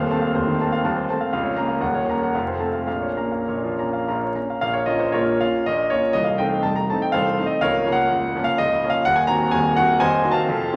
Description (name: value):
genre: classical, romantic triple-time dance for piano with dotted rhythms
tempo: 95-133 BPM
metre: 3/4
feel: rubato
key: Bb minor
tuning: A4 = 440 Hz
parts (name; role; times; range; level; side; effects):
- bright concert grand piano; solo; 0.0-10.8 s; C1 to Bb5; -21 LUFS; equal; none
room: wet recital hall reverb, RT60 1.5 s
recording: vinyl crackle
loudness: -21 LUFS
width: mono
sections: 0.0-4.6 A section; 4.6-10.8 A section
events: none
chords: 0.0 F7/Eb; 1.3 Bbm/Db; 1.8 Ebm7; 2.3 F; 2.9 Bbm; 6.2 Adim/C; 7.6 Bbm/Db; 9.1 Cdim/Eb